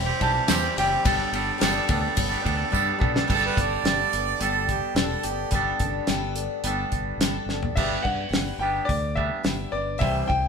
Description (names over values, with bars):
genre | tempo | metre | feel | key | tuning
folk rock and heartland rock | 107 BPM | 4/4 | straight | G major | A4 = 440 Hz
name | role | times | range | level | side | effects
bright grand piano | melody | 0.0-2.7, 7.8-10.5 s | D5 to B5 | -28 LUFS | left 2 dB | none
picked twelve-string acoustic guitar | accompaniment | 0.0-10.5 s | C3 to C5 | -30 LUFS | left 6 dB | none
mellow accordion | sustained chords | 0.0-3.3 s | E3 to G4 | -40 LUFS | left 1 dB | none
twangy electric guitar | riff | 0.0-10.5 s | C3 to A4 | -28 LUFS | right 7 dB | none
fingered electric bass | bass | 0.0-10.5 s | E1 to G2 | -31 LUFS | equal | none
damped 70s drum kit | drums | 0.2-10.4 s | crash cymbal, hi-hat, kick drum, ride cymbal, snare drum, toms | -26 LUFS | equal | none
tambourine | percussion | 0.5-2.9 s | none | -34 LUFS | right 5 dB | none
warm harmonica | second line | 3.3-5.5 s | G4 to D5 | -26 LUFS | right 8 dB | none
room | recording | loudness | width
wet studio reverb, RT60 0.7 s | band playing live in one room | -22 LUFS | side -6 dB against mid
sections
0.0-3.3 A section; 3.3-7.8 B section; 7.8-10.5 C section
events
drum fill 2.7-3.3, 7.5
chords
0.0 C/E; 1.0 Gadd9; 7.8 G